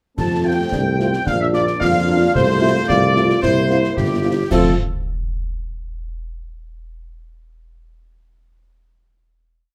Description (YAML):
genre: military-style march for wind band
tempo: 111 BPM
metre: 2/4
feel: straight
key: F major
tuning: A4 = 440 Hz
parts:
  - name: clear trumpet section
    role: melody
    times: 0.2-4.7 s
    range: G4 to A5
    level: -26 LUFS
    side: equal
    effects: none
  - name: clear euphonium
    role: second line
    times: 0.2-4.2 s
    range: C4 to F4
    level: -26 LUFS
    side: equal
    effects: none
  - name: warm woodwind section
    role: second line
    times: 0.2-4.7 s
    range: G4 to A5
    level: -26 LUFS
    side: equal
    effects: none
  - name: warm trombone section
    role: sustained chords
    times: 0.2-4.7 s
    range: A3 to F4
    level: -27 LUFS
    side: equal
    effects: none
  - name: warm tuba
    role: bass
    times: 0.2-4.7 s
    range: G1 to F2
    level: -21 LUFS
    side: equal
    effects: none
  - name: concert snare drum, clash cymbals and concert bass drum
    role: drums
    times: 0.2-4.8 s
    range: none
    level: -28 LUFS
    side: equal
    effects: none
  - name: dark French horn section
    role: accompaniment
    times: 0.4-4.7 s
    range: A3 to F4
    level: -27 LUFS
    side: equal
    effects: none
room: moderate large studio reverb, RT60 0.9 s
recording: none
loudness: -17 LUFS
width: mono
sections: 0.2-4.5 A section; 4.5-5.6 final chord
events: none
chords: 0.2 F; 1.3 Bb; 2.3 F/C; 3.4 C7; 4.5 F